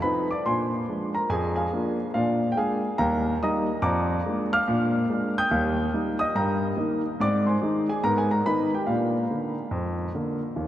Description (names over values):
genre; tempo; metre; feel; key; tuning
jazz, stride piano; 143 BPM; 4/4; swing 64% on 8ths; unclear; A4 = 441 Hz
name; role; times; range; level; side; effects
warm grand piano; solo; 0.0-10.7 s; Eb2 to G6; -23 LUFS; equal; none
room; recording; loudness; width
wet cathedral reverb, RT60 5.0 s; in a vast, echoing space, nothing above 11.0 kHz; -23 LUFS; side -12 dB against mid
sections
0.0-10.6 A section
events
none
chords
0.5 Bb9; 1.3 Bb7/F; 2.1 Bb7; 3.0 Eb; 3.8 Bb7/F; 4.7 Bb7; 5.5 Eb; 6.4 Eb/G; 7.2 Ab; 8.0 Abm; 8.9 Bb